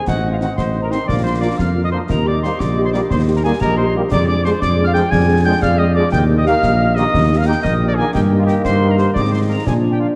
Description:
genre	military-style march for wind band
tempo	119 BPM (dotted quarters)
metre	6/8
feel	straight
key	Eb major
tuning	A4 = 440 Hz
part	warm cornet	melody	0.0-10.1 s	F4 to Ab5	-25 LUFS	equal	none
part	dark woodwind section	second line	0.0-10.2 s	F4 to F5	-27 LUFS	equal	none
part	piccolo	second line	0.0-10.1 s	F5 to Ab6	-27 LUFS	equal	none
part	mellow tuba	bass	0.1-10.1 s	A1 to Bb2	-19 LUFS	equal	none
part	concert snare drum, clash cymbals and concert bass drum	drums	0.1-9.8 s	none	-27 LUFS	equal	none
part	dark French horn section	accompaniment	0.2-10.1 s	F3 to Ab4	-27 LUFS	equal	none
part	mellow trombone section	sustained chords	0.4-10.2 s	Eb3 to D4	-27 LUFS	equal	none
room	wet scoring stage reverb, RT60 1.7 s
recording	dark, warm production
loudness	-16 LUFS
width	mono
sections	0.0-10.2 A section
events	none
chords	0.1 Adim; 1.1 Bb; 2.1 Eb; 4.1 Ddim/F; 6.1 Eb; 8.1 Eb/G; 9.2 Ab; 9.7 Bb7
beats	| 0.07 0.58 | 1.08 1.59 | 2.09 2.60 | 3.10 3.60 | 4.11 4.61 | 5.12 5.62 | 6.13 6.63 | 7.13 7.64 | 8.14 8.65 | 9.15 9.66

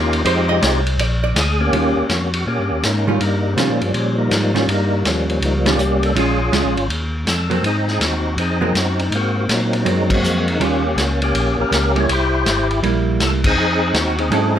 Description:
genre	soul jazz organ trio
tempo	162 BPM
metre	4/4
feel	swing 65% on 8ths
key	Eb mixolydian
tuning	A4 = 441 Hz
part	percussive tonewheel organ	melody	0.0-14.6 s	F3 to Db5	-19 LUFS	left 1 dB	slow rotary speaker, overdrive, chorus vibrato, plate reverb
part	tonewheel organ	bass	0.0-14.6 s	Ab1 to C3	-20 LUFS	equal	overdrive, slow rotary speaker
part	vintage drum kit	drums	0.1-14.4 s	crash cymbal, hi-hat, kick drum, ride cymbal, snare drum	-22 LUFS	equal	none
part	hollow-body jazz guitar	accompaniment	0.3-14.6 s	Eb3 to Eb5	-21 LUFS	right 4 dB	none
room	moderate large studio reverb, RT60 0.8 s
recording	none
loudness	-15 LUFS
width	side -10 dB against mid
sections	0.0-1.7 A section; 1.7-14.6 B section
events	hollow-body jazz guitar solo 0.0-1.7; band accent 5.6, 10.0, 13.4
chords	0.3 Fm7; 1.0 Bb; 1.7 Eb9; 6.2 Bbm7; 6.9 Ebsus2; 7.6 Ab9; 10.6 Eb9; 12.1 C7; 13.6 Fm7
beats	| 0.25 0.62 0.99 1.36 | 1.73 2.09 2.46 2.83 | 3.20 3.57 3.94 4.31 | 4.68 5.05 5.42 5.79 | 6.16 6.53 6.90 7.27 | 7.64 8.01 8.38 8.75 | 9.12 9.49 9.86 10.23 | 10.60 10.97 11.35 11.72 | 12.09 12.46 12.83 13.20 | 13.57 13.94 14.31

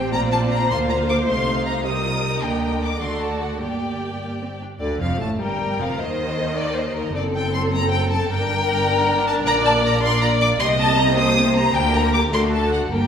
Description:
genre	quick classical-period movement for string orchestra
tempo	104 BPM (dotted quarters)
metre	6/8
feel	straight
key	G minor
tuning	A4 = 441 Hz
part	warm chamber violin section	melody	0.0-13.1 s	D5 to Eb6	-24 LUFS	left 2 dB	none
part	rich chamber violin section	second line	0.0-13.1 s	F#4 to F5	-23 LUFS	left 2 dB	none
part	rich chamber viola section	accompaniment	0.0-13.1 s	D3 to Bb4	-25 LUFS	right 1 dB	none
part	rich chamber cello section	bass	0.0-13.1 s	D2 to D3	-27 LUFS	right 2 dB	none
part	rich chamber double bass section	bass	0.0-13.1 s	F1 to Eb2	-26 LUFS	right 2 dB	none
room	wet recital hall reverb, RT60 1.6 s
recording	recorded in a church or concert hall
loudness	-18 LUFS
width	side -8 dB against mid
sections	0.0-4.8 A section; 4.8-13.1 B section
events	none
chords	0.1 Bb; 1.3 Cm7; 2.4 Gm/D; 3.0 D; 3.6 Gm; 6.0 Cm/Eb; 7.1 F#dim; 8.3 Gm; 9.5 Bb; 10.6 Cm7; 11.8 Gm/D; 12.3 D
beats	| 0.13 0.70 | 1.27 1.85 | 2.43 3.02 | 3.61 4.21 | 4.81 5.40 | 5.99 6.56 | 7.14 7.73 | 8.30 8.88 | 9.46 10.03 | 10.61 11.18 | 11.75 12.33 | 12.93

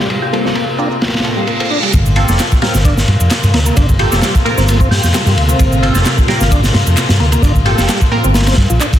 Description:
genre	breakbeat, breaks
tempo	131 BPM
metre	4/4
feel	swing 54% on 16ths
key	G minor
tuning	A4 = 440 Hz
part	dark studio string section	sustained chords	0.0-9.0 s	C3 to F4	-20 LUFS	left 2 dB	sidechain pumping
part	percussive tonewheel organ	riff	0.0-8.9 s	F3 to G4	-20 LUFS	right 1 dB	chorus vibrato, fast rotary speaker, overdrive, low-pass filter, tape echo
part	hollow-body short-scale fingered electric bass	bass	0.0-8.8 s	F1 to G2	-13 LUFS	equal	tube saturation
part	electronic shaker and handclaps	drums	0.0-9.0 s	none	-23 LUFS	right 2 dB	low-pass filter on perc, low-pass filter on snare
part	crunchy breakbeat drum kit	drums	0.1-9.0 s	hi-hat, kick drum, ride cymbal, snare drum	-14 LUFS	equal	low-pass filter on kick, low-pass filter on cymbals, low-pass filter on hats, low-pass filter on snare, low-pass filter on room
part	band-passed chord stab	stabs	0.3-8.3 s	Bb3 to Bb4	-20 LUFS	right 1 dB	phaser, tape echo
part	reverse cymbal	sound effects	1.2-1.9 s	none	-20 LUFS	right 4 dB	none
room	light reverb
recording	dense, heavily limited modern master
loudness	-10 LUFS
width	side -11 dB against mid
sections	0.0-1.9 A section; 1.9-9.0 B section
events	reverse cymbal 1.2-1.9; drop 1.9-9.0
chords	0.0 Gm11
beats	| 0.10 0.56 1.02 1.48 | 1.93 2.39 2.85 3.31 | 3.77 4.22 4.68 5.14 | 5.60 6.06 6.51 6.97 | 7.43 7.89 8.35 8.80

